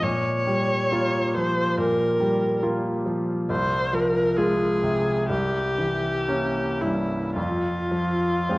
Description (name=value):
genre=classical, romantic duo for viola and grand piano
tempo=53-72 BPM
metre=4/4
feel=rubato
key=unclear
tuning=A4 = 439 Hz
part: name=rich viola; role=melody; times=0.0-8.6 s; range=E4 to Db5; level=-24 LUFS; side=equal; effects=none
part: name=bright grand piano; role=accompaniment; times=0.0-8.6 s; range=C2 to F4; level=-24 LUFS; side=equal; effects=none
room=wet recital hall reverb, RT60 1.5 s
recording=worn, warbling old tape, cassette tape, warbly pitch drift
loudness=-21 LUFS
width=side -21 dB against mid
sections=0.0-8.6 A section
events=none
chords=0.0 Gm7b5/Bb; 3.5 Fm/C; 5.3 C7b9; 7.4 N.C.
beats=| 0.04 0.92 1.79 2.63 | 3.50 4.38 5.29 6.28 | 7.37 8.50